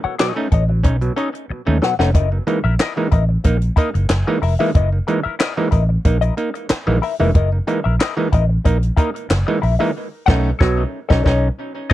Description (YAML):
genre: funk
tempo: 92 BPM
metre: 4/4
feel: straight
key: F# mixolydian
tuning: A4 = 441 Hz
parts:
  - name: semi-hollow electric guitar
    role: accompaniment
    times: 0.0-11.9 s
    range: E4 to F#5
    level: -22 LUFS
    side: left 9 dB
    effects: wah
  - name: vintage muted fingered electric bass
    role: bass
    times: 0.0-11.9 s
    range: E#1 to D#2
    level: -17 LUFS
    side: equal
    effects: none
  - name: overdriven clav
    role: stabs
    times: 0.2-11.9 s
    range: B2 to D#4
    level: -21 LUFS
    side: right 2 dB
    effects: tape echo
  - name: compact cocktail drum kit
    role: drums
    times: 0.2-11.9 s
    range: crash cymbal, handclaps, hi-hat, kick drum, snare drum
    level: -17 LUFS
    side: equal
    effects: none
room: little or no reverb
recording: dry, close 1970s-style studio recording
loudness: -15 LUFS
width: side -14 dB against mid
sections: 0.0-11.9 A section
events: drum fill 1.5-2.1; band accent 10.0-11.9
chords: 0.0 B9; 2.1 F#13; 10.0 B9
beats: 0.20 0.85 1.50 | 2.15 2.80 3.45 4.10 | 4.75 5.40 6.05 6.70 | 7.35 8.00 8.65 9.30 | 9.95 10.61 11.26 11.91